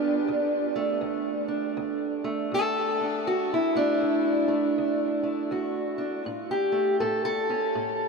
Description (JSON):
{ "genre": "acoustic country blues, solo or duo", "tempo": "80 BPM", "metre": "4/4", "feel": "swing 62% on 8ths", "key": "D major", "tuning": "A4 = 440 Hz", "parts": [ { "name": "fingerpicked steel-string acoustic guitar", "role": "solo", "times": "0.0-8.1 s", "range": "D2 to A4", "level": "-24 LUFS", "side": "right 1 dB", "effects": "analog delay" } ], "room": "wet huge ambient reverb, RT60 8.1 s", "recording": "dreamy mix soaked in reverb", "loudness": "-24 LUFS", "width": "side -4 dB against mid", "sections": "0.0-8.1 A section", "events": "none", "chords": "0.3 D; 6.2 A" }